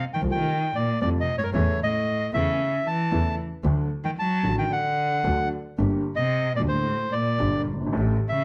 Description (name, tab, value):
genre	tango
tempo	113 BPM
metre	4/4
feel	rubato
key	unclear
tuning	A4 = 440 Hz
part	bandoneon	melody	0.0-8.4 s	Bb4 to A5	-28 LUFS	equal	none
part	warm cello	second line	0.0-8.4 s	G2 to F#3	-31 LUFS	equal	none
part	warm upright piano	accompaniment	0.2-8.2 s	F#1 to G4	-30 LUFS	equal	none
part	clear double bass	bass	0.2-8.1 s	G1 to F2	-30 LUFS	equal	none
room	moderate large studio reverb, RT60 0.8 s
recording	none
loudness	-25 LUFS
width	mono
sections	0.0-8.4 A section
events	none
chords	0.0 F; 1.5 A/E; 3.6 D; 5.8 Gm; 7.9 A7